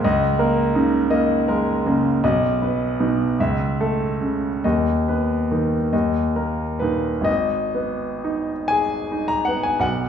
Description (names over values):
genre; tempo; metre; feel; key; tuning
classical, romantic nocturne for solo piano; 41-58 BPM (dotted quarters); 6/8; rubato; G# minor; A4 = 440 Hz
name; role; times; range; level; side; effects
clear grand piano; solo; 0.0-10.1 s; G#1 to A#5; -18 LUFS; equal; none
room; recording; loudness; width
wet recital hall reverb, RT60 1.4 s; heard from further back in the room; -18 LUFS; side -8 dB against mid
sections
0.0-7.3 A section; 7.3-10.1 B section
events
none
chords
0.0 D#5/C#; 2.2 B; 3.4 A/C#; 4.6 B/D#; 5.9 D#5; 7.3 G#m